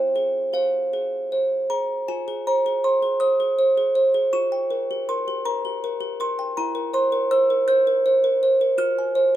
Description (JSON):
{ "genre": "classical, lullaby for music box", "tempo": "80 BPM", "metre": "3/4", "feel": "straight", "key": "F minor", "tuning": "A4 = 444 Hz", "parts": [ { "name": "music box", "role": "solo", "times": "0.0-9.4 s", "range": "E4 to G6", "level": "-19 LUFS", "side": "right 1 dB", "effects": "none" } ], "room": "wet spring reverb, RT60 2.5 s", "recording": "minimal, uncompressed stereo recording", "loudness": "-19 LUFS", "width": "side -12 dB against mid", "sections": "0.0-2.1 A section; 2.1-9.4 B section", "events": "none", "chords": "0.0 Fm; 4.3 Gm7b5/F; 6.6 C7/E; 8.8 Fm", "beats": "0.54 1.31 | 2.08 2.83 3.58 | 4.32 5.07 5.82 | 6.56 7.31 8.05 | 8.79" }